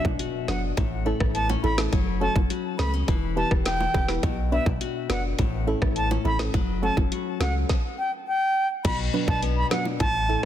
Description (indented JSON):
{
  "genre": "dancehall",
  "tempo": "104 BPM",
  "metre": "4/4",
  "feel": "straight",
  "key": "B minor",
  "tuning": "A4 = 435 Hz",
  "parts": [
    { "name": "bright reedy silver concert flute", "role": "melody", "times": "0.0-10.4 s", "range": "E5 to B5", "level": "-28 LUFS", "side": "equal", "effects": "ping-pong delay" },
    { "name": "soft round pluck", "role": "accompaniment", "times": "0.0-10.3 s", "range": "F#3 to B4", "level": "-31 LUFS", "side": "right 4 dB", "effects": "chorus" },
    { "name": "nylon-string guitar", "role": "arpeggios", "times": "0.0-10.5 s", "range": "A2 to G4", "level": "-31 LUFS", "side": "left 10 dB", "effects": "none" },
    { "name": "punchy sub bass", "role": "bass", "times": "0.0-10.4 s", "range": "E1 to C#2", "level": "-27 LUFS", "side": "equal", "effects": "none" },
    { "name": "island pop drum kit", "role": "drums", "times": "0.0-10.1 s", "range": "crash cymbal, hi-hat, kick drum, rim click, snare drum", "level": "-27 LUFS", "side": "equal", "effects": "vintage 12-bit sampler grit" },
    { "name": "impact", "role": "sound effects", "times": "0.0-1.9 s", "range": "none", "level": "-45 LUFS", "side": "equal", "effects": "none" },
    { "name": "bongos", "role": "percussion", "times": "0.1-10.1 s", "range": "none", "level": "-36 LUFS", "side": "right 3 dB", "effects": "none" }
  ],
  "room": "light reverb, digital ambience",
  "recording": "dense, heavily limited modern master",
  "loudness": "-22 LUFS",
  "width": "side -11 dB against mid",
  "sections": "0.0-8.8 A section; 8.8-10.5 B section",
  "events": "impact 0.0-1.9",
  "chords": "0.0 Bm; 0.8 A; 1.9 F#m; 3.1 Em; 4.2 Bm; 5.4 A; 6.5 F#m; 7.7 N.C.; 8.8 Bm"
}